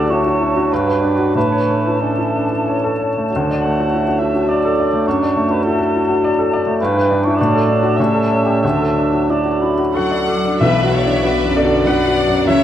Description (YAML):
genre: classical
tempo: 88-105 BPM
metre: 3/4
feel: rubato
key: D major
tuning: A4 = 444 Hz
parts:
  - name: clear baby grand piano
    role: melody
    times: 0.0-12.6 s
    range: B1 to F#5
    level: -16 LUFS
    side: left 1 dB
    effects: none
  - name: dark cor anglais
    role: second line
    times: 0.0-10.0 s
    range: A4 to F#5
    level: -22 LUFS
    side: right 3 dB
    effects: none
  - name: mellow clarinet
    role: second line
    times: 0.0-10.3 s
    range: C#4 to D4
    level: -22 LUFS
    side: right 2 dB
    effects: none
  - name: silver concert flute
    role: second line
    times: 0.0-10.6 s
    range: G5 to D6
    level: -26 LUFS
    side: left 2 dB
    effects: none
  - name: mellow bassoon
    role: accompaniment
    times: 0.0-10.3 s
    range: E3 to G3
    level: -23 LUFS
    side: right 2 dB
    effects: none
  - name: clear symphonic violin section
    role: second line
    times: 10.0-12.6 s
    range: D5 to F#5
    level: -24 LUFS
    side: left 1 dB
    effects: none
  - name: bright symphonic cello section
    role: bass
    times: 10.0-12.6 s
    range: D3 to F#3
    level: -24 LUFS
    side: right 3 dB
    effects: none
  - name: clear symphonic violin section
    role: melody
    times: 10.6-12.6 s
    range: A#4 to D5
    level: -28 LUFS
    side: left 2 dB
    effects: none
  - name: rich symphonic viola section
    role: accompaniment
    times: 10.6-12.6 s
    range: A4 to D5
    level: -22 LUFS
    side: equal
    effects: none
  - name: clear French horn section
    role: sustained chords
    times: 10.6-12.6 s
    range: A#3 to D4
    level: -26 LUFS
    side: left 5 dB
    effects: none
  - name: warm symphonic double bass section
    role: bass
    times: 10.6-12.6 s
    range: B1 to C#2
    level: -26 LUFS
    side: right 2 dB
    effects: none
  - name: timpani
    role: percussion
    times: 10.6-11.5 s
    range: B2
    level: -24 LUFS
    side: left 1 dB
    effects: none
room: moderate scoring stage reverb, RT60 1.6 s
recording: none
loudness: -14 LUFS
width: side -11 dB against mid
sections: 0.0-10.6 A section; 10.6-12.6 B section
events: none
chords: 0.0 D; 0.7 Gmaj7; 1.4 A; 3.3 D; 6.8 Em7/G; 7.4 D/A; 8.0 A7; 8.6 D; 10.6 Bm